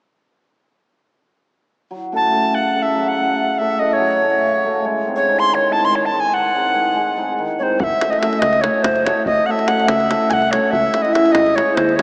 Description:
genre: balkan folk, Balkan wedding band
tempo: free time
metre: none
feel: none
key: F# dorian sharp4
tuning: A4 = 440 Hz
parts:
  - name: cimbalom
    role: accompaniment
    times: 1.9-12.0 s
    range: C#3 to A4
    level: -20 LUFS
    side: equal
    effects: none
  - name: bright reedy tenor recorder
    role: melody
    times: 2.2-12.0 s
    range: B#4 to B#5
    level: -16 LUFS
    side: equal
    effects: none
  - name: modern bright fingered electric bass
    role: bass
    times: 7.8-12.0 s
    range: F#1 to D#2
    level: -30 LUFS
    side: equal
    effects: none
  - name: davul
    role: percussion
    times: 7.8-12.0 s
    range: none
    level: -24 LUFS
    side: equal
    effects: none
room: wet cathedral reverb, RT60 4.9 s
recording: in a vast, echoing space, small speaker sound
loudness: -14 LUFS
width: side -32 dB against mid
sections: 1.9-7.8 A section; 7.8-12.0 B section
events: none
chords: 1.9 F#m; 4.9 G#; 7.8 F#m; 10.7 C#m

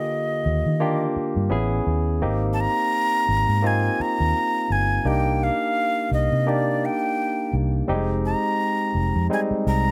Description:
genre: lush 1970s-style soul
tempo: 85 BPM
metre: 4/4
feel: swing 58% on 16ths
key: F dorian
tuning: A4 = 440 Hz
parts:
  - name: jazz flute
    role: melody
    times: 0.0-9.9 s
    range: D5 to Bb5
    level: -26 LUFS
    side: equal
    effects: none
  - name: barky tine electric piano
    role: accompaniment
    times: 0.0-9.9 s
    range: D3 to G#4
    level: -27 LUFS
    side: equal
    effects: none
  - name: vintage muted fingered electric bass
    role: bass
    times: 0.5-9.9 s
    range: F1 to Eb3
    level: -25 LUFS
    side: equal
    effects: none
room: light reverb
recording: none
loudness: -22 LUFS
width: mono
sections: 0.0-9.9 A section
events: none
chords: 0.0 Ebmaj7; 1.5 Amaj9; 2.2 Abmaj9; 5.1 Cm9; 7.9 Fm9

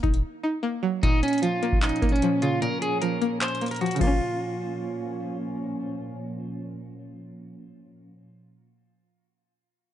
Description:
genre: hip hop, trap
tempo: 151 BPM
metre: 4/4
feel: half-time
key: Bb minor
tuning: A4 = 443 Hz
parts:
  - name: string-like resonator pluck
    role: accompaniment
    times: 0.0-8.4 s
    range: Bb2 to Eb4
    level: -28 LUFS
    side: left 1 dB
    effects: chorus, low-pass filter
  - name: booming analog drum machine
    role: drums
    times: 0.0-4.2 s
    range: crash cymbal, handclaps, hi-hat, kick drum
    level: -25 LUFS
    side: equal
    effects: none
  - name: electric guitar at the edge of break-up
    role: melody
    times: 1.0-5.4 s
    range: Db4 to C5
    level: -27 LUFS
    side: right 2 dB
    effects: low-pass filter, tape echo
  - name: dark studio string section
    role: sustained chords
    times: 1.0-8.1 s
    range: Bb2 to Db4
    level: -33 LUFS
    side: equal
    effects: low-pass filter
room: light reverb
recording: dark, warm production, nothing above 11.0 kHz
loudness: -24 LUFS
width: side -11 dB against mid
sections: 0.0-1.0 A section; 1.0-4.2 B section; 4.2-7.4 C section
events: break 0.2-1.0, 2.6-4.2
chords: 0.0 Ebm; 1.0 Bbm

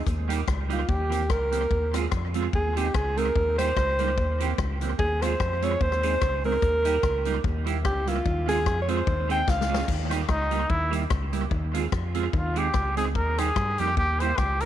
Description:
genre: ska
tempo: 147 BPM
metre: 4/4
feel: swing 56% on 8ths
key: Eb mixolydian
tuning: A4 = 440 Hz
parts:
  - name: breathy alto saxophone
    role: melody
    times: 0.0-9.9 s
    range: F4 to G5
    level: -27 LUFS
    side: equal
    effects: none
  - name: fingered electric bass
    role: bass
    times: 0.1-14.7 s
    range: Db2 to G2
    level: -28 LUFS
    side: equal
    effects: none
  - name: swinging big-band drum kit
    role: drums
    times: 0.1-14.7 s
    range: crash cymbal, hi-hat, kick drum, rim click, snare drum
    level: -29 LUFS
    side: left 2 dB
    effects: tape echo
  - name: mellow electric guitar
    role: accompaniment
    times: 0.3-14.7 s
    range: E3 to Ab4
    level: -31 LUFS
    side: right 10 dB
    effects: phaser, tape echo
  - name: breathy trumpet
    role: melody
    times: 10.3-14.7 s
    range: Eb4 to C5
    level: -27 LUFS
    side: equal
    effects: none
room: light reverb, small room ambience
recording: 1960s-style stereo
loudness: -23 LUFS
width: side -11 dB against mid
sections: 0.0-9.9 A section; 9.9-14.7 A section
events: alto saxophone solo 0.0-9.9; drum fill 9.5-9.9; trumpet solo 9.9-14.7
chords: 0.1 Eb; 0.9 C7/Eb; 1.7 Fm/Eb; 2.5 Ab/Eb; 3.4 Eb; 4.2 C7/Eb; 5.0 Fm/Eb; 5.8 Ab/Eb; 6.6 Eb; 7.4 Dbdim7; 8.3 Fm/Eb; 9.1 Ab/Eb; 9.5 Db; 9.9 Eb; 10.7 Dbdim7; 11.5 Fm/Eb; 12.3 Ab/Eb; 13.1 Eb; 14.0 Eb13b9

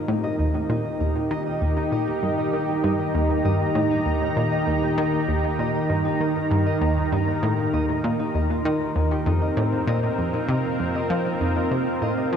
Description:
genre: ambient, sequencer-driven space music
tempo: 98 BPM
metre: 4/4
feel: straight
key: Eb major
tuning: A4 = 439 Hz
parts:
  - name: lush unison pad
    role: sustained chords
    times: 0.0-12.4 s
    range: Eb3 to Bb5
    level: -24 LUFS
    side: equal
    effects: chorus
  - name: concert harp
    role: arpeggios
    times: 0.0-12.4 s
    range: Bb3 to Eb5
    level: -30 LUFS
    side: moving between left 2 dB and right 4 dB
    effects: auto-pan, analog delay
  - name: analog pluck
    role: riff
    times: 0.1-12.4 s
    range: Eb2 to F3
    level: -24 LUFS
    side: equal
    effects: chorus, analog delay
room: wet huge ambient reverb, RT60 7.8 s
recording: in a vast, echoing space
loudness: -21 LUFS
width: side -8 dB against mid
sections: 0.0-12.4 A section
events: none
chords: 0.0 Eb; 9.3 Fsus4

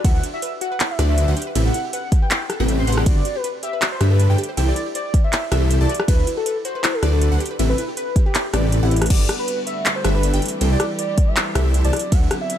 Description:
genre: future bass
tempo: 159 BPM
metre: 4/4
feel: swing 54% on 16ths, half-time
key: G major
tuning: A4 = 440 Hz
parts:
  - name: warm velvety synth lead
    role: melody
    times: 0.0-12.6 s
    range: E4 to C6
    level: -26 LUFS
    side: left 1 dB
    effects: chorus, sidechain pumping, tape echo
  - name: wide unison pluck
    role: arpeggios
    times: 0.0-12.3 s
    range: D5 to A5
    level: -36 LUFS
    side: equal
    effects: sidechain pumping
  - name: wide unison pluck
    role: arpeggios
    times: 0.0-9.1 s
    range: E4 to G5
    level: -32 LUFS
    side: moving between left 6 dB and right 3 dB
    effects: auto-pan, sidechain pumping, tape echo
  - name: dense compressed supersaw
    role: riff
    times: 0.0-12.3 s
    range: C4 to A5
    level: -27 LUFS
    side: equal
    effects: sidechain pumping
  - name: wide detuned saw bass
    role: bass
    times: 0.0-12.3 s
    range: G1 to G2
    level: -18 LUFS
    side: equal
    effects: chorus, sidechain pumping
  - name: electronic kick drum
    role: drums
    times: 0.0-12.2 s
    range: none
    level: -16 LUFS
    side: equal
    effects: none
  - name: trap drum kit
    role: drums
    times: 0.0-12.6 s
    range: crash cymbal, handclaps, hi-hat, ride cymbal, rim click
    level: -24 LUFS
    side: equal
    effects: overdrive
  - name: warm chamber string section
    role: sustained chords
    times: 9.1-12.6 s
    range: D3 to G4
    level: -30 LUFS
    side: left 1 dB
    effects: sidechain pumping
room: little or no reverb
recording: none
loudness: -17 LUFS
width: side -10 dB against mid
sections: 0.0-9.1 A section; 9.1-12.6 A section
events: drop 0.0-9.1, 9.1-12.6; kick drops out 8.7-9.1; drum fill 8.9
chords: 0.0 D13; 1.4 Am9; 3.1 Gmaj9; 4.4 C6; 5.9 D13; 7.4 Am9; 9.1 Gmaj9; 10.4 C6; 11.9 D13

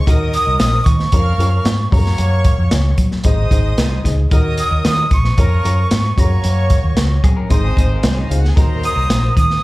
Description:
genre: uptempo 1960s-style soul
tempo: 113 BPM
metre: 4/4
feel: straight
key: unclear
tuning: A4 = 440 Hz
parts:
  - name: warm studio violin section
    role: second line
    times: 0.0-9.4 s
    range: Bb3 to F6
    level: -29 LUFS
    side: equal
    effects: slapback echo
  - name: warm horn section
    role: second line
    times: 0.1-9.4 s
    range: F3 to Db5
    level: -26 LUFS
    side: equal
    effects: slapback echo
  - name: warm upright piano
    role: accompaniment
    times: 0.1-9.4 s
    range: Ab2 to Eb5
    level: -27 LUFS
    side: left 5 dB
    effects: slapback echo
  - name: vintage muted fingered electric bass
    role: bass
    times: 0.1-9.6 s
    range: Ab1 to Gb3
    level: -16 LUFS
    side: equal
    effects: none
  - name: crunchy breakbeat drum kit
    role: drums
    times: 0.1-9.6 s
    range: hi-hat, kick drum, snare drum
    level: -16 LUFS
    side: equal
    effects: none
  - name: breathy jazz flute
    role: melody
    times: 0.3-9.6 s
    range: Bb5 to Eb6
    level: -20 LUFS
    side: right 1 dB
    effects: slapback echo
  - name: glockenspiel with soft plastic mallets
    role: second line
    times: 4.6-9.6 s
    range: Bb6 to Eb7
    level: -33 LUFS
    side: right 2 dB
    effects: slapback echo
  - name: electric guitar through a small old amp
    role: riff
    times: 7.2-8.4 s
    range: C4 to C5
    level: -29 LUFS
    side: left 4 dB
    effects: slapback echo
room: little or no reverb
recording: live gig heard through the venue's PA, club reverb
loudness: -12 LUFS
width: side -19 dB against mid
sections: 0.0-9.6 A section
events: none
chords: 0.1 Ebm; 1.1 Bbm/F; 1.9 Gb; 3.3 Ab; 4.3 Ebm; 5.4 Bbm/F; 6.2 Gb; 7.5 Ab; 8.6 Ebm

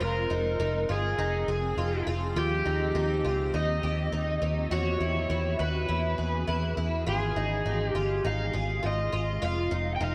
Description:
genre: dream pop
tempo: 102 BPM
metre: 4/4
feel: straight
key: Ab major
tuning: A4 = 438 Hz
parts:
  - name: overdriven slide guitar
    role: melody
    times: 0.0-10.1 s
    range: G4 to G5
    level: -33 LUFS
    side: equal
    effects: analog delay
  - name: granular cloud pad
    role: sustained chords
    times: 0.0-10.1 s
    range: Eb3 to G5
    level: -40 LUFS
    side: equal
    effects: built-in reverb
  - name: picked twelve-string acoustic guitar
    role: arpeggios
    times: 0.0-10.1 s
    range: Eb4 to Ab4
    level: -36 LUFS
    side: equal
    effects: ensemble chorus, analog delay
  - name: vintage muted fingered electric bass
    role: bass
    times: 0.0-10.1 s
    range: F1 to E2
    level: -32 LUFS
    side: equal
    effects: none
room: moderate plate reverb, RT60 2.6 s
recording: echo-heavy mix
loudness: -29 LUFS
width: mono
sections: 0.0-10.1 A section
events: none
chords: 0.0 Fm7; 2.4 Eb6; 4.7 E6; 7.1 Ab6; 9.4 Fm7

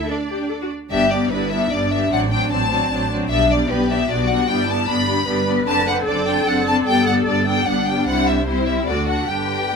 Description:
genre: quick classical-period movement for string orchestra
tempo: 150 BPM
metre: 3/4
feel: straight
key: G major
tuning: A4 = 440 Hz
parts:
  - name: warm studio violin section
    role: melody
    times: 0.0-9.8 s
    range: B4 to B5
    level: -22 LUFS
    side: left 3 dB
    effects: none
  - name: warm studio viola section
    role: accompaniment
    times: 0.0-9.8 s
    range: D3 to A4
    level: -22 LUFS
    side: left 3 dB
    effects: none
  - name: dark studio cello section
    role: bass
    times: 0.0-9.8 s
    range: C4 to B4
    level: -25 LUFS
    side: right 1 dB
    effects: none
  - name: warm studio violin section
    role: second line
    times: 0.9-9.8 s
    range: D4 to D5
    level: -26 LUFS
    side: right 1 dB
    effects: none
  - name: warm studio double bass section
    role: bass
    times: 0.9-9.8 s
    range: F#1 to D2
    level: -25 LUFS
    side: right 3 dB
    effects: none
room: light reverb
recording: minimal, uncompressed stereo recording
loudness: -17 LUFS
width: side -5 dB against mid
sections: 0.9-9.8 A section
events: none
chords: 0.0 D5; 0.9 G; 2.1 D7/A; 3.3 G/B; 4.5 G; 5.7 D7/F#; 6.9 G; 8.1 C; 8.9 D

